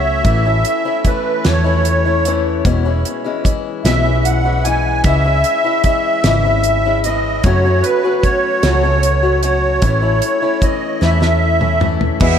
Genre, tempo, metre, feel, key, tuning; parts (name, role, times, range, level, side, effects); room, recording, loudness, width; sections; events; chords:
folk rock and heartland rock; 50 BPM (dotted quarters); 6/8; straight; A4 = 439 Hz
musette accordion; melody; 0.0-12.4 s; B4 to G#5; -17 LUFS; right 2 dB; ping-pong delay
picked acoustic archtop guitar; accompaniment; 0.0-12.4 s; E2 to F#4; -20 LUFS; left 6 dB
hollow-body short-scale picked electric bass; bass; 0.0-12.4 s; E1 to F#2; -16 LUFS; equal
damped 70s drum kit; drums; 0.2-12.4 s; crash cymbal, hi-hat, kick drum, snare drum, toms; -19 LUFS; equal
dark upright piano; accompaniment; 12.2-12.4 s; E4 to B4; -21 LUFS; right 11 dB; ensemble chorus
hand-pumped harmonium; sustained chords; 12.2-12.4 s; B3 to G#4; -22 LUFS; right 4 dB
wet plate reverb, RT60 2.6 s; dreamy mix soaked in reverb; -13 LUFS; side -8 dB against mid
0.0-12.2 A section
drum fill 11.0-12.2
0.2 A; 2.6 E6; 5.0 C#m; 7.4 F#m; 9.8 A